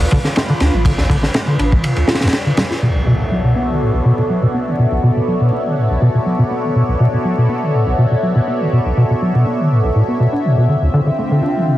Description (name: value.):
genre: breakbeat, breaks.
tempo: 122 BPM.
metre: 4/4.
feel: straight.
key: B minor.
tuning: A4 = 438 Hz.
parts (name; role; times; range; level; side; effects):
lush unison pad; sustained chords; 0.0-11.8 s; D3 to E5; -20 LUFS; equal; chorus, phaser, sidechain pumping.
deep acid bass; riff; 0.0-11.8 s; B1 to F4; -15 LUFS; equal; none.
saturated sub bass; bass; 0.0-1.8 s; A1 to D2; -18 LUFS; equal; none.
crunchy breakbeat drum kit; drums; 0.0-2.8 s; kick drum, ride cymbal, snare drum; -18 LUFS; equal; none.
impact; sound effects; 2.8-4.8 s; none; -24 LUFS; equal; none.
room: wet small room ambience, RT60 0.5 s.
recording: heavily compressed radio sound, multiband compression, vinyl crackle.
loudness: -13 LUFS.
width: side -14 dB against mid.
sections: 0.0-2.8 A section; 2.8-11.8 B section.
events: filter sweep on acid bass 0.0-2.8; impact 2.8-4.8.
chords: 0.0 Dm; 2.8 Bm11; 10.7 Dm11.